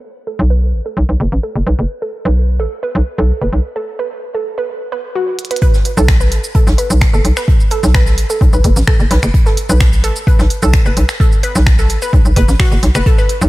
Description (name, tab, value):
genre	minimal techno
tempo	129 BPM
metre	4/4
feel	straight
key	unclear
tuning	A4 = 439 Hz
part	resonant blip pluck	riff	0.3-13.3 s	F#4 to B4	-21 LUFS	right 1 dB	chorus, sidechain pumping, diffuse ambient delay
part	hollow knocking FM bass	bass	0.4-13.5 s	F#1 to B1	-12 LUFS	equal	sidechain pumping
part	minimal click drum kit	drums	5.4-13.5 s	cabasa, finger snaps, hi-hat	-21 LUFS	right 1 dB	overdrive, low-pass filter on hats, low-pass filter on snare, low-pass filter on perc
part	electronic kick drum	drums	5.6-13.2 s	none	-11 LUFS	equal	none
part	jazz brush drum kit	drums	5.6-13.4 s	hi-hat, snare drum	-32 LUFS	right 2 dB	none
room	digital ambience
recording	none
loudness	-11 LUFS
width	side -18 dB against mid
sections	0.0-5.6 A section; 5.6-13.5 B section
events	filter sweep on synth pluck 0.0-5.6; break 3.8-5.6; drum fill 5.4; drop 5.6-13.5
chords	0.0 B5